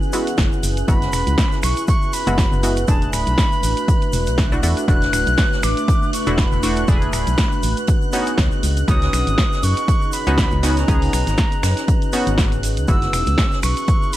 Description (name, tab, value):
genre	deep house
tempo	120 BPM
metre	4/4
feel	swing 55% on 16ths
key	F# minor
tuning	A4 = 440 Hz
part	dark analog pad	sustained chords	0.0-14.2 s	A3 to E5	-28 LUFS	right 1 dB	wide subtle chorus, sidechain pumping
part	filtered dub chord stab	stabs	0.0-14.2 s	G#3 to G#4	-24 LUFS	equal	chorus, sidechain pumping, ping-pong delay
part	tube shaker	percussion	0.0-14.2 s	none	-34 LUFS	left 2 dB	none
part	granular cloud pad	texture	0.0-14.2 s	A3 to G#5	-32 LUFS	right 1 dB	built-in reverb, sidechain pumping
part	soft string machine	texture	0.0-14.2 s	F#6	-33 LUFS	equal	ensemble chorus
part	jazz brush drum kit	drums	0.1-14.2 s	hi-hat, snare drum	-34 LUFS	right 2 dB	sidechain pumping on hats, high-pass filter on hats, studio ambience, high-pass filter on snare, high-pass filter on room
part	punchy analog drum machine	drums	0.1-14.2 s	finger snaps, hi-hat, ride cymbal, snare drum	-25 LUFS	right 1 dB	studio ambience
part	organ-like FM bass	bass	0.4-13.7 s	D1 to F#2	-20 LUFS	equal	sidechain pumping
part	electronic kick drum	drums	0.4-14.0 s	none	-18 LUFS	equal	overdrive, studio ambience
part	bright reedy jazz flute	melody	0.9-14.2 s	A5 to F#6	-25 LUFS	equal	vintage 12-bit sampler grit, dub echo
room	small room ambience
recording	vinyl crackle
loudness	-16 LUFS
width	side -14 dB against mid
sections	0.0-14.2 A section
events	none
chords	0.0 F#9sus4; 2.9 E9sus4; 7.9 C#9sus4; 12.9 F#9sus4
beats	0.38 | 0.88 1.38 1.88 2.38 | 2.88 3.38 3.88 4.38 | 4.88 5.38 5.88 6.38 | 6.88 7.38 7.88 8.38 | 8.88 9.38 9.88 10.38 | 10.88 11.38 11.88 12.38 | 12.88 13.38 13.88